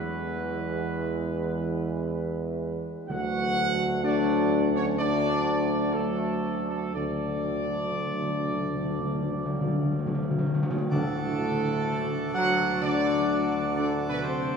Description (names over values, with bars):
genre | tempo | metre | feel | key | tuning
classical | 58-64 BPM | 4/4 | straight | D lydian, D major from 10.9 s | A4 = 439 Hz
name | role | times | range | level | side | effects
warm trumpet section | melody | 0.0-14.6 s | A4 to F#5 | -31 LUFS | right 1 dB | none
clear trombone section | sustained chords | 0.0-14.6 s | A2 to A3 | -33 LUFS | right 3 dB | none
dark French horn section | sustained chords | 0.0-14.6 s | A3 to F#4 | -31 LUFS | left 6 dB | none
clear tuba | bass | 0.0-14.6 s | D2 to E2 | -32 LUFS | right 4 dB | none
timpani | percussion | 3.1-12.3 s | D3 | -31 LUFS | left 1 dB | none
pipe organ, plenum | sustained chords | 10.9-14.6 s | D3 to D5 | -32 LUFS | equal | none
room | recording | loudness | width
wet cathedral reverb, RT60 7.3 s | minimal, uncompressed stereo recording | -25 LUFS | side -6 dB against mid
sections
0.0-10.9 A section; 10.9-14.6 B section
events
timpani fill 7.0-10.9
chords
0.0 E; 3.1 D